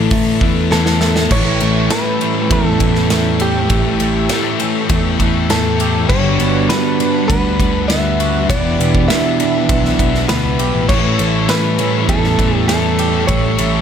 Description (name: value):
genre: rock, shoegaze and dream pop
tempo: 100 BPM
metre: 4/4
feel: straight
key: unclear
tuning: A4 = 441 Hz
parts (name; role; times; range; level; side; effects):
- direct-recorded clean electric guitar; melody; 0.0-13.8 s; G4 to E5; -21 LUFS; equal; analog delay
- sweeping resonant pad; sustained chords; 0.0-13.8 s; D3 to C#6; -27 LUFS; equal; chorus
- direct-recorded clean electric guitar; arpeggios; 0.0-13.8 s; E3 to G4; -25 LUFS; right 10 dB; analog chorus, analog delay
- direct-recorded clean electric guitar; riff; 0.0-13.8 s; A2 to G4; -21 LUFS; right 10 dB; reverse reverb
- thick fuzz guitar; riff; 0.0-13.8 s; E2 to A3; -18 LUFS; left 10 dB; distortion, ensemble chorus
- picked electric bass; bass; 0.0-13.8 s; E1 to A2; -19 LUFS; right 1 dB; none
- big rock drum kit; drums; 0.1-13.7 s; crash cymbal, hi-hat, kick drum, ride cymbal, snare drum; -19 LUFS; equal; none
room: small room reverb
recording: none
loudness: -12 LUFS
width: side -8 dB against mid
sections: 0.0-1.3 A section; 1.3-13.8 B section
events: drum fill 0.7-1.3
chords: 0.0 Asus4; 1.3 A7; 6.1 Gmaj7; 8.5 Em7; 10.9 A7